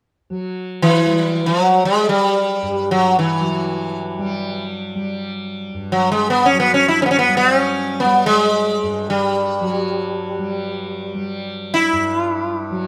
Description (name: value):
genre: indian classical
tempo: free time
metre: none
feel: none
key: G raga marwa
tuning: A4 = 440 Hz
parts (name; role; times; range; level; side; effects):
- tanpura; drone; 0.3-12.9 s; G2 to G3; -28 LUFS; equal; none
- sitar; melody; 0.8-12.9 s; E3 to E4; -18 LUFS; equal; none
room: moderate studio reverb, RT60 0.6 s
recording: none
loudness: -18 LUFS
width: mono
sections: 0.3-12.9 A section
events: none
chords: none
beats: free time